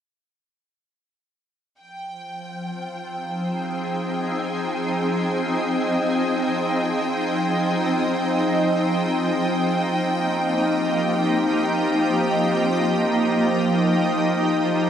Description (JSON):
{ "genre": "ambient", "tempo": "free time", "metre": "none", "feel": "none", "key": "F minor", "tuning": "A4 = 440 Hz", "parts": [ { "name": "shimmering ambient pad", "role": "sustained chords", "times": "2.6-14.9 s", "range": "F3 to Eb5", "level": "-21 LUFS", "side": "equal", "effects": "chorus, built-in reverb, shimmer reverb" }, { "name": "organ-like drone", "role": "drone", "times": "2.3-14.9 s", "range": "F3 to F4", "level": "-29 LUFS", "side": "right 2 dB", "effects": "ensemble chorus, built-in reverb" }, { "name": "clear studio violin section", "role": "texture", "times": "1.8-14.9 s", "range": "G5", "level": "-29 LUFS", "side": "right 1 dB", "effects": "shimmer reverb" } ], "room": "wet spring reverb, RT60 2.8 s", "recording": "none", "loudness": "-20 LUFS", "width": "side -8 dB against mid", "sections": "1.8-14.9 A section", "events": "none", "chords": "1.8 Fm7; 9.2 Ebadd9/F" }